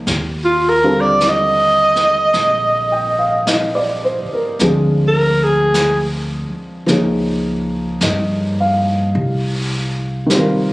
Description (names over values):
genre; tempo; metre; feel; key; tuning
jazz ballad; 53 BPM; 4/4; swing 67% on 8ths; unclear; A4 = 440 Hz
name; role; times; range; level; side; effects
warm upright piano; accompaniment; 0.0-10.7 s; D3 to G5; -18 LUFS; equal; none
upright bass; bass; 0.0-10.7 s; Bb1 to G2; -21 LUFS; equal; none
jazz brush drum kit; drums; 0.1-10.7 s; brushed snare drum, hi-hat, snare drum; -24 LUFS; equal; none
warm alto saxophone; melody; 0.4-6.0 s; F4 to Eb5; -13 LUFS; right 1 dB; none
room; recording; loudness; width
light reverb; recorded on a phone in the room, club reverb, compression; -13 LUFS; side -20 dB against mid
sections
0.0-10.7 A section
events
alto saxophone solo 0.0-10.7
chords
0.1 Ebmaj9; 4.6 Dm7b5; 6.9 Db; 9.2 Cm7